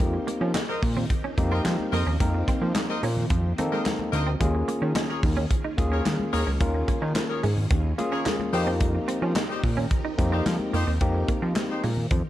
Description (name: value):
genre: early-eighties boogie funk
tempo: 109 BPM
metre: 4/4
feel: straight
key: unclear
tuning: A4 = 438 Hz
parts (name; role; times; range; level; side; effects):
- overdriven tine electric piano; accompaniment; 0.0-11.9 s; Bb3 to Bb4; -29 LUFS; left 2 dB; none
- string machine, violins; sustained chords; 0.0-12.3 s; Eb3 to Bb4; -37 LUFS; equal; ensemble chorus
- fat analog bass; bass; 0.0-12.2 s; Db2 to F3; -25 LUFS; equal; none
- modern studio drum kit; drums; 0.0-12.2 s; handclaps, hi-hat, kick drum, snare drum; -28 LUFS; equal; none
- congas; percussion; 0.0-12.2 s; none; -35 LUFS; left 2 dB; none
- semi-hollow electric guitar; riff; 0.1-12.1 s; Ab3 to Eb4; -34 LUFS; right 5 dB; ensemble chorus
- clear horn section; second line; 0.7-11.8 s; Eb4 to Eb5; -33 LUFS; left 2 dB; none
room: light reverb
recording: dark, warm production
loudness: -22 LUFS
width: side -14 dB against mid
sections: 0.0-12.3 A section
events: none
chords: 0.0 F9sus4; 4.4 Eb9sus4; 8.5 F9sus4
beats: | 0.00 0.55 1.10 1.65 | 2.20 2.75 3.30 3.85 | 4.41 4.96 5.51 6.06 | 6.61 7.16 7.71 8.26 | 8.81 9.36 9.91 10.46 | 11.01 11.56 12.11